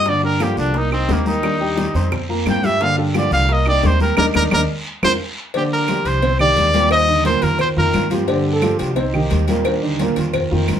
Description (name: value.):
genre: latin, Cuban son and guajira.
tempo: 175 BPM.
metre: 4/4.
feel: straight.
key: G minor.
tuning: A4 = 441 Hz.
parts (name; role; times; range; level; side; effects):
bright trumpet; melody; 0.0-8.1 s; Bb3 to G5; -18 LUFS; equal; none.
fingerpicked steel-string acoustic guitar; accompaniment; 0.0-10.8 s; C3 to G4; -25 LUFS; left 3 dB; none.
warm concert grand piano; arpeggios; 0.0-10.8 s; Bb2 to Eb6; -22 LUFS; right 4 dB; none.
upright bass; bass; 0.0-10.8 s; C2 to G2; -21 LUFS; equal; none.
bongos and cowbell; percussion; 0.1-10.8 s; none; -26 LUFS; left 4 dB; none.
congas; percussion; 0.1-10.8 s; none; -26 LUFS; left 5 dB; none.
guiro; percussion; 0.1-10.8 s; none; -33 LUFS; right 1 dB; none.
claves; percussion; 0.4-10.8 s; none; -28 LUFS; right 5 dB; none.
dark trombone; second line; 8.1-9.7 s; Eb4 to A4; -24 LUFS; right 2 dB; none.
room: wet studio reverb, RT60 0.6 s.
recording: band playing live in one room.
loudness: -15 LUFS.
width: side -9 dB against mid.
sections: 0.0-5.5 A section; 5.5-10.8 B section.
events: trumpet solo 0.0-5.5; band accent 4.2-5.5; drum fill 5.0-5.5.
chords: 0.1 Gm7; 0.8 Cm7; 1.4 Ebmaj7; 2.1 F7sus4; 2.8 Gm7; 3.5 Cm7; 4.2 Eb5; 4.9 F7sus4; 5.5 Gm7; 6.2 Cm7; 6.9 Ebmaj7; 7.6 F7sus4; 8.3 Gm7; 9.0 Cm7; 9.7 Ebmaj7.